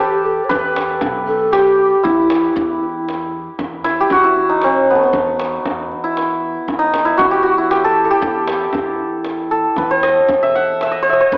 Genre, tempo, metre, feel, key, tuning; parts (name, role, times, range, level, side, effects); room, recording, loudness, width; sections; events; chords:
Persian modal ensemble; 116 BPM; 3/4; straight; E avaz esfahan; A4 = 440 Hz
santur; melody; 0.0-11.4 s; A3 to F#5; -14 LUFS; equal
breathy mellow low ney; second line; 0.0-3.1 s; E4 to C#5-48c; -15 LUFS; equal
upright bass; bass; 0.0-11.4 s; B1 to E2; -33 LUFS; equal
tombak; percussion; 0.5-11.4 s; -26 LUFS; equal
moderate recital hall reverb, RT60 1.5 s; AM radio sound; -13 LUFS; side -38 dB against mid
0.0-3.6 A section; 3.6-11.4 B section